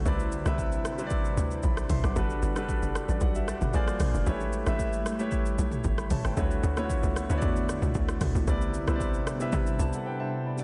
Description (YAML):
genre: amapiano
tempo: 114 BPM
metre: 4/4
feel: straight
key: unclear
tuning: A4 = 440 Hz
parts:
  - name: warm concert grand piano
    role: accompaniment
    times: 0.0-10.6 s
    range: C3 to D6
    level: -35 LUFS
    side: equal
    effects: none
  - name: ethereal airy pad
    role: sustained chords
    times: 0.0-10.6 s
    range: C3 to B4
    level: -38 LUFS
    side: equal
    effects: ensemble chorus, built-in reverb, sidechain pumping
  - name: tight log drum bass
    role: bass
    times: 0.0-9.9 s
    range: F1 to C3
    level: -32 LUFS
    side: equal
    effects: none
  - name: deep house drum kit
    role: drums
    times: 0.1-10.6 s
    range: hi-hat, kick drum, rim click, shaker, toms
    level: -33 LUFS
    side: equal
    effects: none
  - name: mallet-like synth pluck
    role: melody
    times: 10.6 s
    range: D5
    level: -44 LUFS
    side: equal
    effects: chorus
room: light reverb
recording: nothing above 10.5 kHz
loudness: -28 LUFS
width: mono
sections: 0.0-10.6 A section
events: drop 0.0-10.6; grand piano fill 9.5-10.6; break 10.1-10.6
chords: 0.1 Cmaj9; 2.2 Gmaj7; 3.7 Bb9; 4.3 A9; 6.4 Dmaj13; 8.5 Cmaj9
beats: | 0.06 0.58 1.11 1.63 | 2.16 2.69 3.21 3.74 | 4.27 4.79 5.32 5.84 | 6.37 6.90 7.42 7.95 | 8.48 9.00 9.53 10.05 | 10.58